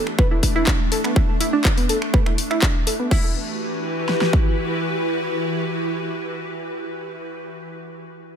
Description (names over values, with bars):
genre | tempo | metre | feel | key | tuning
progressive house | 123 BPM | 4/4 | straight | E minor | A4 = 440 Hz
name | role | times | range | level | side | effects
evolving wavetable pad | sustained chords | 0.0-7.3 s | E3 to B4 | -25 LUFS | equal | ensemble chorus, built-in reverb, sidechain pumping
glassy wavetable pluck | arpeggios | 0.0-3.3 s | B3 to B4 | -24 LUFS | right 2 dB | chorus, sidechain pumping, ping-pong delay
house drum kit | drums | 0.1-3.2 s | crash cymbal, finger snaps, handclaps, hi-hat | -26 LUFS | left 2 dB | overdrive, small room ambience
big-room dance drum kit | drums | 0.2-4.4 s | kick drum, snare drum | -18 LUFS | equal | overdrive, small room ambience
room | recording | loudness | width
digital ambience | none | -18 LUFS | side -8 dB against mid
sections
0.0-3.1 A section; 3.1-7.0 B section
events
filter sweep on synth arpeggio sound 0.0-3.1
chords
0.0 D5; 3.1 Emadd9